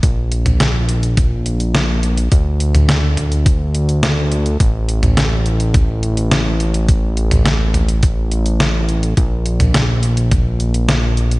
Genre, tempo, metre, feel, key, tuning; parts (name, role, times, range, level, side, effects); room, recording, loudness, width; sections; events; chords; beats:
synthwave; 105 BPM; 4/4; straight; A4 = 440 Hz
fat analog bass; bass; 0.0-11.4 s; A1 to D2; -16 LUFS; equal; sidechain pumping
detuned 8-bit digital drum machine; drums; 0.0-11.4 s; hi-hat, snare drum, toms; -18 LUFS; equal; studio reverb, gated reverb
electronic kick drum; drums; 0.0-10.4 s; -14 LUFS; equal; studio reverb
digital ambience; nothing above 10.4 kHz; -13 LUFS; side -22 dB against mid
0.0-11.4 A section
| 0.03 0.60 1.17 1.75 | 2.32 2.89 3.46 4.03 | 4.60 5.17 5.75 6.32 | 6.89 7.46 8.03 8.60 | 9.17 9.74 10.32 10.89